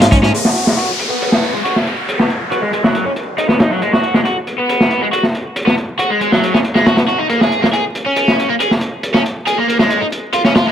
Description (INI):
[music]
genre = breakbeat, breaks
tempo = 138 BPM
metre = 4/4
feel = straight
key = G# dorian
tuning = A4 = 440 Hz
[part]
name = overdriven electric guitar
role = riff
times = 0.0-10.7 s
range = F#3 to G#4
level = -16 LUFS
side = equal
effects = vintage 12-bit sampler grit, low-pass filter, dub echo
[part]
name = crunchy breakbeat drum kit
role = drums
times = 0.0-10.7 s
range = hi-hat, kick drum, snare drum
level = -15 LUFS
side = equal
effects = low-pass filter on kick, low-pass filter on hats, low-pass filter on snare, low-pass filter on room
[part]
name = downlifter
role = sound effects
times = 0.3-3.8 s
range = none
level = -21 LUFS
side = left 1 dB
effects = none
[sound]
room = light reverb, small room reverb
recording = vinyl crackle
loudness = -12 LUFS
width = side -9 dB against mid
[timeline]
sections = 0.3-10.7 A section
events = filter sweep on overdriven electric guitar 0.3-10.7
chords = none